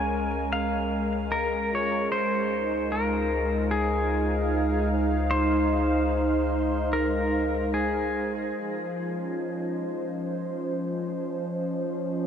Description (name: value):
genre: ambient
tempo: 75 BPM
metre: 4/4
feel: straight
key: Db major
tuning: A4 = 440 Hz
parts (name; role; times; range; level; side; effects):
- pedal steel guitar; melody; 0.0-8.3 s; Ab4 to Ab5; -28 LUFS; left 1 dB; tape echo
- warm analog pad; sustained chords; 0.0-12.3 s; F3 to F5; -27 LUFS; equal; wide subtle chorus
- felt-muted upright piano; arpeggios; 0.0-8.6 s; F4 to Eb5; -47 LUFS; equal; none
- round analog bass; bass; 0.0-8.5 s; Db2; -31 LUFS; equal; none
room: wet huge ambient reverb, RT60 8.3 s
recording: dreamy mix soaked in reverb, nothing above 10.5 kHz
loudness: -24 LUFS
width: side -8 dB against mid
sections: 0.0-8.6 A section; 8.6-12.3 B section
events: none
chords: 0.0 Ab6/Db; 8.6 Dbmaj9